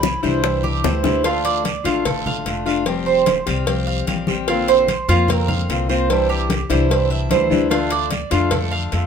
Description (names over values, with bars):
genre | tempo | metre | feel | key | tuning
latin, Cuban son and guajira | 148 BPM | 4/4 | straight | D minor | A4 = 440 Hz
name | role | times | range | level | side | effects
fingerpicked steel-string acoustic guitar | accompaniment | 0.0-9.1 s | C3 to G4 | -22 LUFS | left 5 dB | none
Cuban tres | arpeggios | 0.0-9.1 s | E4 to F5 | -21 LUFS | right 7 dB | none
upright bass | bass | 0.0-9.1 s | F1 to F2 | -23 LUFS | equal | none
bongos and cowbell | percussion | 0.0-9.1 s | none | -25 LUFS | left 6 dB | none
congas | percussion | 0.0-9.1 s | none | -27 LUFS | left 2 dB | none
guiro | percussion | 0.0-9.1 s | none | -31 LUFS | right 6 dB | none
room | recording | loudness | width
light reverb | minimal, uncompressed stereo recording | -16 LUFS | side -7 dB against mid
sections
0.0-1.2 A section; 1.2-9.1 B section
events
drum fill 0.6-1.2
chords
0.0 Cadd9; 1.2 Dm; 2.9 Fsus2; 4.5 Bbadd9; 6.1 Cadd9; 7.7 Dm